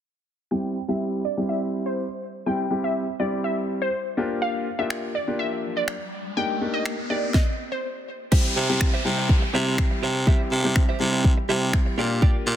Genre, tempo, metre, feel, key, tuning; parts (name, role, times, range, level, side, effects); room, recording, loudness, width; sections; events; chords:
dance-pop; 123 BPM; 4/4; straight; C mixolydian; A4 = 440 Hz
glassy wavetable pluck; melody; 0.5-7.8 s; C5 to G5; -28 LUFS; equal; chorus, low-pass filter, digital delay
warm concert grand piano; accompaniment; 0.5-12.5 s; G3 to G4; -27 LUFS; equal; sidechain pumping, low-pass filter
riser and downlifter; sound effects; 5.5-12.2 s; -33 LUFS; equal
house drum kit; drums; 4.9-12.3 s; crash cymbal, finger snaps, kick drum, snare drum; -21 LUFS; equal; soft clipping on snare
direct-recorded clean electric guitar; riff; 8.3-12.6 s; F4 to E5; -32 LUFS; right 9 dB; analog chorus
raspy baritone saxophone; bass; 8.6-12.6 s; Bb2 to C3; -24 LUFS; equal; sidechain pumping
light reverb, digital ambience; dense, heavily limited modern master; -21 LUFS; side -10 dB against mid
0.5-8.3 A section; 8.3-12.6 B section
filter sweep 0.5-8.3; riser 5.5-8.3
0.5 C; 4.2 Bb6; 6.4 Ebmaj7/Bb; 8.3 C; 12.0 Bb6